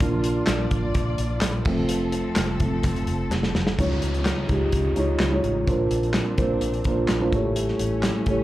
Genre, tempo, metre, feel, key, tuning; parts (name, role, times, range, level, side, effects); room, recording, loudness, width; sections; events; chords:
piano-driven pop; 127 BPM; 4/4; straight; A4 = 440 Hz
felt-muted upright piano; accompaniment; 0.0-8.4 s; A2 to Db5; -24 LUFS; right 1 dB; plate reverb
muted studio string section; sustained chords; 0.0-8.4 s; F3 to D5; -34 LUFS; left 2 dB; plate reverb
vintage muted fingered electric bass; bass; 0.0-8.4 s; F1 to Db2; -27 LUFS; equal
modern studio drum kit; drums; 0.0-8.4 s; crash cymbal, handclaps, hi-hat, kick drum, snare drum; -25 LUFS; equal
group handclap; percussion; 0.5-3.4 s; -39 LUFS; left 2 dB
downlifter; sound effects; 3.8-7.6 s; -38 LUFS; left 1 dB
light reverb; live gig heard through the venue's PA, club reverb; -21 LUFS; side -15 dB against mid
0.0-3.8 A section; 3.8-8.4 B section
felt piano solo 0.0-3.8; drum fill 3.3-3.8
0.0 Bb; 1.7 F; 3.8 Dbadd9; 5.7 Bbadd9; 7.3 A7